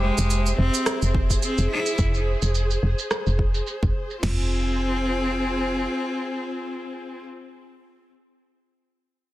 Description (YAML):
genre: organic downtempo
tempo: 107 BPM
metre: 4/4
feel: swing 56% on 16ths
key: F harmonic minor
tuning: A4 = 440 Hz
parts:
  - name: clear cello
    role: melody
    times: 0.0-7.2 s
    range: Ab3 to E4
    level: -27 LUFS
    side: equal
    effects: digital delay
  - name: warm studio string section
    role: sustained chords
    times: 0.0-7.2 s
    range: F4 to E5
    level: -30 LUFS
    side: left 1 dB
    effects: sidechain pumping
  - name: steel-string zither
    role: arpeggios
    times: 0.0-2.1 s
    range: C4 to E5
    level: -36 LUFS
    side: right 2 dB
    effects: vintage 12-bit sampler grit, digital delay
  - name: woody FM bass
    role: bass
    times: 0.0-5.9 s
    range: F1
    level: -23 LUFS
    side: equal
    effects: none
  - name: electronic shaker and rim click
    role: drums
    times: 0.2-4.2 s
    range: none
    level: -28 LUFS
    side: right 2 dB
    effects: low-pass filter on perc, low-pass filter on snare, low-pass filter on room
  - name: deep house drum kit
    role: drums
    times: 1.1-4.4 s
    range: crash cymbal, kick drum, snare drum, toms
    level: -26 LUFS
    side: equal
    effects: overdrive
room: light reverb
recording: dense, heavily limited modern master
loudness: -21 LUFS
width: side -16 dB against mid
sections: 0.0-4.2 A section; 4.2-6.5 B section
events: filter sweep on FM bass 0.0-4.2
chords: 0.0 Fm